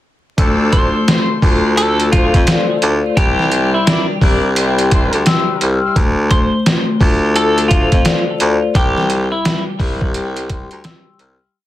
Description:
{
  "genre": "hip hop, boom-bap hip-hop",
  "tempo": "86 BPM",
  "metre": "4/4",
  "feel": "swing 62% on 16ths",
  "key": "D minor",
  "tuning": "A4 = 440 Hz",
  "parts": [
    { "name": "vibraphone with soft mallets", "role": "accompaniment", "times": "0.4-11.6 s", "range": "G3 to F6", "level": "-19 LUFS", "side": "left 4 dB", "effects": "cassette tape, high-pass filter, low-pass filter" },
    { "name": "warm horn section", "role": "stabs", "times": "0.4-5.2 s", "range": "F3 to D5", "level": "-23 LUFS", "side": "left 1 dB", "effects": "high-pass filter, low-pass filter, ping-pong delay" },
    { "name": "warm baritone saxophone", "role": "bass", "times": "0.4-11.4 s", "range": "C2 to F2", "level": "-17 LUFS", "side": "equal", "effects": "none" },
    { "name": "trip hop sampler-style drum kit", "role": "drums", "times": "0.4-11.4 s", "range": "hi-hat, kick drum, snare drum", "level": "-15 LUFS", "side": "equal", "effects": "overdrive" },
    { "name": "semi-hollow electric guitar", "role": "melody", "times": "0.7-9.6 s", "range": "E4 to C5", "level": "-20 LUFS", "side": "equal", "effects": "high-pass filter, low-pass filter, ping-pong delay" }
  ],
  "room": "light reverb",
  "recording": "dense, heavily limited modern master, vinyl crackle",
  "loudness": "-12 LUFS",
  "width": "side -14 dB against mid",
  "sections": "0.4-11.5 hook",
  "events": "fade-out 8.8-11.5",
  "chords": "0.4 Dm7; 3.2 C; 6.0 Dm7; 8.8 C",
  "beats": "| 0.38 1.07 1.77 2.47 | 3.17 3.87 4.56 5.26 | 5.96 6.66 7.35 8.05 | 8.75 9.45 10.14 10.84"
}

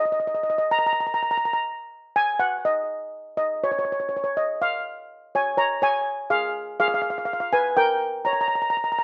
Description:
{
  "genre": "calypso",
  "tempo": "123 BPM",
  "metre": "4/4",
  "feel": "straight",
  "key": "unclear",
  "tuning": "A4 = 440 Hz",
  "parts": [
    { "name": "steel pan", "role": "solo", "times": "0.0-9.0 s", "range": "G#4 to A#5", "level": "-21 LUFS", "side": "equal", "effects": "slapback echo" }
  ],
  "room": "little or no reverb",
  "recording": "recorded outdoors, with no room sound",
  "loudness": "-21 LUFS",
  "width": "side -29 dB against mid",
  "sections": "0.0-5.8 A section; 5.8-9.0 B section",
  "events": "none",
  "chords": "0.0 N.C.; 5.8 C#; 7.8 A#5",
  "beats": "0.45 0.93 1.42 | 1.91 2.39 2.88 3.37 | 3.85 4.34 4.83 5.32 | 5.80 6.29 6.78 7.27 | 7.76 8.24 8.73"
}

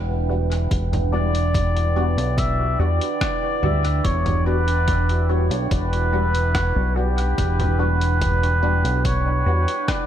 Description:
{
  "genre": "ambient dub",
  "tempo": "72 BPM",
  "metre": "4/4",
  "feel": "straight",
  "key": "E dorian",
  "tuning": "A4 = 441 Hz",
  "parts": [
    { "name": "deep dark ambient pad", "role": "sustained chords", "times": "0.0-10.1 s", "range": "D4 to G5", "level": "-28 LUFS", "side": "right 3 dB", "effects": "chorus, built-in reverb" },
    { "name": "fingered electric bass", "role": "bass", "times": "0.0-9.7 s", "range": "E1 to E2", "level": "-20 LUFS", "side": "equal", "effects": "tube saturation" },
    { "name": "filtered dub chord stab", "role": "stabs", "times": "0.3-9.7 s", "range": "G3 to F#4", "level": "-30 LUFS", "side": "left 3 dB", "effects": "phaser, ensemble chorus, vintage 12-bit sampler grit, dub echo" },
    { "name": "lo-fi sampler-style drum kit", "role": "drums", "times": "0.5-10.1 s", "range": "congas, hi-hat, rim click", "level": "-30 LUFS", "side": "right 1 dB", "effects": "studio reverb, dub echo" },
    { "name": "electronic kick drum", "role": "drums", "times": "0.7-10.1 s", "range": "none", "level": "-26 LUFS", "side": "equal", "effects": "overdrive, studio reverb" },
    { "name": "trumpet with bucket mute", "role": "melody", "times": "1.1-10.1 s", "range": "G4 to E5", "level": "-24 LUFS", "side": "equal", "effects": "dub echo" }
  ],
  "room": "digital ambience",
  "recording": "echo-heavy mix",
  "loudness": "-18 LUFS",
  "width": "side -10 dB against mid",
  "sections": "0.0-10.1 A section",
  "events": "none",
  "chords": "0.0 Em7",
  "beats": "| 0.71 1.55 2.38 3.21 | 4.05 4.88 5.71 6.55 | 7.38 8.21 9.05 9.88"
}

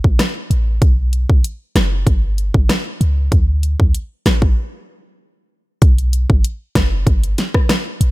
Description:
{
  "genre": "dancehall",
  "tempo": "96 BPM",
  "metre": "4/4",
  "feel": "straight",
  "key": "B minor",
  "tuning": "A4 = 440 Hz",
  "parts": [
    { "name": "clean 808-style bass", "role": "bass", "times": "0.0-8.1 s", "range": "F#1 to D2", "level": "-15 LUFS", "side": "equal", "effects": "none" },
    { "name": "pop drum kit", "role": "drums", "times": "0.0-8.1 s", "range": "hi-hat, kick drum, rim click, snare drum", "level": "-15 LUFS", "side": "equal", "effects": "none" }
  ],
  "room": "little or no reverb",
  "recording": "none",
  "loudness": "-14 LUFS",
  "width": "side -19 dB against mid",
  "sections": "0.0-5.8 A section; 5.8-8.1 B section",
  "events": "break 4.6-5.8",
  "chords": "none",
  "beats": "0.19 | 0.82 1.44 2.07 2.69 | 3.32 3.94 4.57 5.19 | 5.82 6.44 7.07 7.69"
}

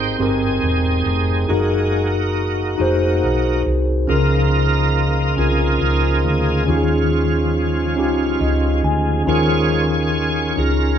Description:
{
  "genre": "gospel",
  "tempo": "46 BPM (dotted quarters)",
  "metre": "6/8",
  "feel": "straight",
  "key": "unclear",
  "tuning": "A4 = 440 Hz",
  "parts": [
    { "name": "tine electric piano", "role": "accompaniment", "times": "0.0-11.0 s", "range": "Ab2 to Ab5", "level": "-19 LUFS", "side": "left 1 dB", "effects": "medium stereo tremolo" },
    { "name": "bright tonewheel organ", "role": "sustained chords", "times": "0.0-11.0 s", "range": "F3 to G5", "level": "-22 LUFS", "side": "right 3 dB", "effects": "slow rotary speaker, overdrive, chorus vibrato" },
    { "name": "hollow-body short-scale fingered electric bass", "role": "bass", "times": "0.0-11.0 s", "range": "Fb1 to Eb2", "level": "-20 LUFS", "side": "equal", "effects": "none" }
  ],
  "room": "moderate large studio reverb, RT60 0.9 s",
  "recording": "band playing live in one room",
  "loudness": "-16 LUFS",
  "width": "side -9 dB against mid",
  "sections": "0.0-11.0 A section",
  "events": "tonewheel organ solo 0.0-11.0; tine electric piano fill 8.0-9.3",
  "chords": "0.0 Abmaj9; 1.5 Gb69; 4.1 Db6; 6.7 Eb9sus4",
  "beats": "0.20 | 1.50 2.80 | 4.09 5.39 | 6.68 7.98 | 9.27 10.56"
}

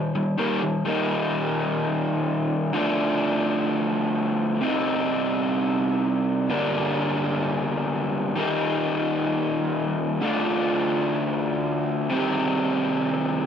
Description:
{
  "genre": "rock",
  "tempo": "free time",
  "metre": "none",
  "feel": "none",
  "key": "unclear",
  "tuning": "A4 = 441 Hz",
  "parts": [
    { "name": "raw garage guitar", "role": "solo", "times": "0.0-13.5 s", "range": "G2 to G4", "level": "-22 LUFS", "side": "equal", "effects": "overdrive, slapback echo" }
  ],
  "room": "light reverb",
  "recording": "nothing above 10.6 kHz",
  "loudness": "-22 LUFS",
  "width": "side -8 dB against mid",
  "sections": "0.9-13.5 A section",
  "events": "none",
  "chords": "0.0 Eb; 2.7 Dm; 4.6 Cm; 6.5 Gm; 8.4 Eb; 10.2 Dm; 12.1 Cm",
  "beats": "free time"
}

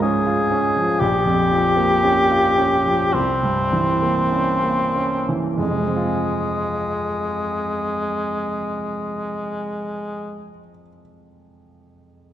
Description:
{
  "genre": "classical, romantic duo for cor anglais and grand piano",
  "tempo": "46-62 BPM",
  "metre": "4/4",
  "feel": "rubato",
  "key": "F minor",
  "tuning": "A4 = 440 Hz",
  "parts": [
    { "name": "mellow cor anglais", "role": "melody", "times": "0.0-10.5 s", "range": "Ab3 to Ab4", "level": "-20 LUFS", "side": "left 1 dB", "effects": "none" },
    { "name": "bright grand piano", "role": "accompaniment", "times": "0.0-12.3 s", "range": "Bb1 to Ab4", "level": "-22 LUFS", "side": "right 1 dB", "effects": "none" }
  ],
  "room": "wet scoring stage reverb, RT60 2.0 s",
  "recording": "dark, warm production",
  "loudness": "-18 LUFS",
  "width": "side -11 dB against mid",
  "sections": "0.0-5.6 A section; 5.6-10.3 B section",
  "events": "slowing down 0.0-5.6",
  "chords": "0.0 Db; 1.0 Gm7b5/Bb; 3.1 C7b9; 5.6 Fm",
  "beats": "0.02 | 1.00 2.03 3.13 4.32 | 5.58 6.77 7.94 9.12"
}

